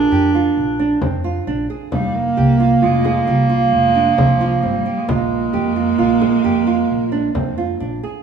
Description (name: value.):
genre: contemporary instrumental, chamber music in an uneven meter.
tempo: 133 BPM.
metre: 7/4.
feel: straight.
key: Bb mixolydian.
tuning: A4 = 440 Hz.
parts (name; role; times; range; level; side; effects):
warm clarinet; second line; 0.0-8.0 s; Ab3 to D4; -18 LUFS; right 2 dB; none.
nylon-string guitar; arpeggios; 0.0-8.2 s; C4 to Ab4; -22 LUFS; right 4 dB; none.
upright bass; bass; 0.0-8.0 s; F1 to F2; -21 LUFS; equal; none.
handpan; texture; 0.0-3.7 s; D4 to Bb4; -30 LUFS; left 4 dB; none.
frame drum; percussion; 0.3-8.1 s; none; -25 LUFS; left 3 dB; none.
clear cello; melody; 1.9-7.8 s; F3 to Bb3; -19 LUFS; right 6 dB; none.
room: moderate scoring stage reverb, RT60 1.8 s.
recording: none.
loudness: -14 LUFS.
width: side -7 dB against mid.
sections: 0.0-8.2 A section.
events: none.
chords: 0.0 Bb; 1.9 Fmadd9; 5.1 Bb7(no3).